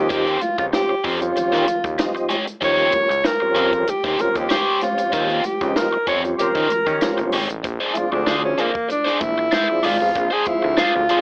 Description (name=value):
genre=funk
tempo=96 BPM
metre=4/4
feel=straight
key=unclear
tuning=A4 = 440 Hz
part: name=breathy alto saxophone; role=melody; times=0.0-11.2 s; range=Bb3 to Db5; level=-20 LUFS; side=equal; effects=none
part: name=tonewheel organ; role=stabs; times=0.0-11.2 s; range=F3 to F4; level=-24 LUFS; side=equal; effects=chorus vibrato, stopped rotary speaker
part: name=fat analog bass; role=bass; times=0.0-11.1 s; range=G1 to Eb3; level=-25 LUFS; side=equal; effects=none
part: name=crunchy overdriven guitar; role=accompaniment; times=0.1-11.2 s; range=Db4 to D5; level=-23 LUFS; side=equal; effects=wah
part: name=compact cocktail drum kit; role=drums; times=0.1-11.2 s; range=hi-hat, kick drum, snare drum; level=-25 LUFS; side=equal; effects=none
part: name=congas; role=percussion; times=0.4-11.2 s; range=none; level=-33 LUFS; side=equal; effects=none
part: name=dark horn section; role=second line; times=6.4-7.1 s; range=C4 to Db5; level=-24 LUFS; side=equal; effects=none
room=moderate club reverb, RT60 0.5 s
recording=AM radio sound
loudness=-17 LUFS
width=side -34 dB against mid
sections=0.0-7.6 A section; 7.6-11.2 B section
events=band accent 5.1-7.6; alto saxophone solo 7.6-11.2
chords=0.0 Eb13; 7.6 Bb9